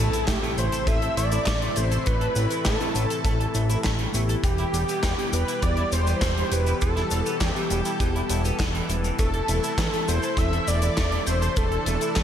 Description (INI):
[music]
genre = synthwave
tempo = 101 BPM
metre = 4/4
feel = straight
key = A minor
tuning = A4 = 440 Hz
[part]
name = wide unison lead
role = melody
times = 0.0-12.2 s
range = G4 to E5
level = -29 LUFS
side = equal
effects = diffuse ambient delay
[part]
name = string machine, violins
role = second line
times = 0.0-12.2 s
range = G4 to E5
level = -35 LUFS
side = equal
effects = ensemble chorus, analog delay
[part]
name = lush unison pad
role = sustained chords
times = 0.0-12.2 s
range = B2 to A4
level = -31 LUFS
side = equal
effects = chorus, sidechain pumping
[part]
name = clean electric guitar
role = riff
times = 0.0-12.2 s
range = E3 to A4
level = -36 LUFS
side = right 3 dB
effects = wide subtle chorus, diffuse ambient delay
[part]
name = FM electric piano with soft pad layer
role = stabs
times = 0.0-12.2 s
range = A2 to B4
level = -33 LUFS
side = equal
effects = chorus, analog delay
[part]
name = fat analog bass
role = bass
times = 0.0-12.2 s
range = E1 to A2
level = -26 LUFS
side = equal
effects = tube saturation, sidechain pumping
[part]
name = impact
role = sound effects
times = 0.0-2.1 s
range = none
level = -34 LUFS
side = equal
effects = none
[part]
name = gated 80s drum kit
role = drums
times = 0.1-12.2 s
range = cabasa, handclaps, hi-hat, snare drum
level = -30 LUFS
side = left 1 dB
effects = none
[part]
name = kick drum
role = drums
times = 0.3-12.2 s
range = none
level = -26 LUFS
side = equal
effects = none
[sound]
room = moderate lush hall reverb, RT60 2.0 s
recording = dreamy mix soaked in reverb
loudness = -21 LUFS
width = side -9 dB against mid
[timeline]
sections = 0.0-12.2 A section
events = impact 0.0-2.1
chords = 0.0 Am; 4.4 Em; 9.2 Am/E